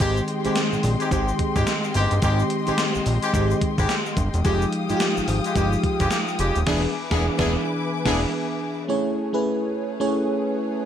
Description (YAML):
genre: R&B, new jack swing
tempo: 108 BPM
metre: 4/4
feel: swing 60% on 16ths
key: unclear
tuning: A4 = 440 Hz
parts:
  - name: FM electric piano with soft pad layer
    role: accompaniment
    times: 0.0-10.9 s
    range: Eb3 to C#5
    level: -24 LUFS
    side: equal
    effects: chorus
  - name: dark studio string section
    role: sustained chords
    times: 0.0-10.9 s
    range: Ab3 to Eb6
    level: -30 LUFS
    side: left 3 dB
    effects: none
  - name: warm horn section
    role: stabs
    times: 0.0-8.2 s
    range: Ab3 to G#4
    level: -28 LUFS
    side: left 2 dB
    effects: ping-pong delay
  - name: fat analog bass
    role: bass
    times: 0.0-8.3 s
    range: Eb1 to Bb1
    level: -24 LUFS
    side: equal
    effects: none
  - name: gated 80s digital drum machine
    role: drums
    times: 0.0-8.3 s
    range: crash cymbal, hi-hat, kick drum, snare drum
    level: -26 LUFS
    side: equal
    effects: gated reverb, gated reverb snare, overdrive, vintage 12-bit sampler grit
  - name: tube shaker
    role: percussion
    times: 0.0-6.7 s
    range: none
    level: -41 LUFS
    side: left 9 dB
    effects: none
room: light reverb, digital ambience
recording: none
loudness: -20 LUFS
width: side -9 dB against mid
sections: 0.0-8.9 A section; 8.9-10.9 A section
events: band accent 6.7-8.9; break 7.8-8.9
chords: 0.0 Abmaj7; 4.4 Fm9; 6.7 E7; 8.9 Amaj7